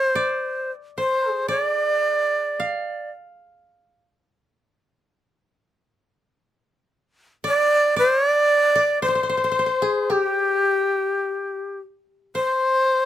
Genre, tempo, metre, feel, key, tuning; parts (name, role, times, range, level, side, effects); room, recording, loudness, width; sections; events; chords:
japanese traditional, Japanese chamber music; 56 BPM; 2/4; rubato; A4 = 441 Hz
breathy bright shakuhachi; melody; 0.0-3.1, 7.5-13.1 s; G4 to D5; -19 LUFS; equal
koto; second line; 0.0-4.0, 7.4-13.1 s; G4 to F5; -28 LUFS; left 1 dB
light reverb; close, detailed microphones; -19 LUFS; side -12 dB against mid
0.0-12.4 A section